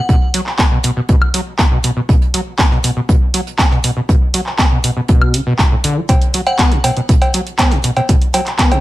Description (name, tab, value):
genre	acid house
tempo	120 BPM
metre	4/4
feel	straight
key	B minor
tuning	A4 = 440 Hz
part	glassy synth bell	melody	0.0, 6.5-6.7 s	F#5	-24 LUFS	equal	chorus, tape echo
part	overdriven acid bass	riff	0.1-8.8 s	A2 to B3	-18 LUFS	equal	distortion, wide subtle chorus, tape echo
part	electronic kick drum	drums	0.1-8.7 s	none	-13 LUFS	equal	none
part	soft brush drum kit	drums	0.1-8.7 s	hi-hat, snare drum	-28 LUFS	right 3 dB	high-pass filter on hats, high-pass filter on snare, high-pass filter on room
part	punchy analog drum machine	drums	0.3-8.8 s	cowbell, handclaps, hi-hat, woodblock	-17 LUFS	right 1 dB	none
room	light reverb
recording	none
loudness	-12 LUFS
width	side -16 dB against mid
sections	0.0-8.8 A section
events	none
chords	none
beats	| 0.09 0.59 1.09 1.59 | 2.09 2.59 3.09 3.59 | 4.09 4.59 5.09 5.59 | 6.09 6.59 7.09 7.59 | 8.09 8.59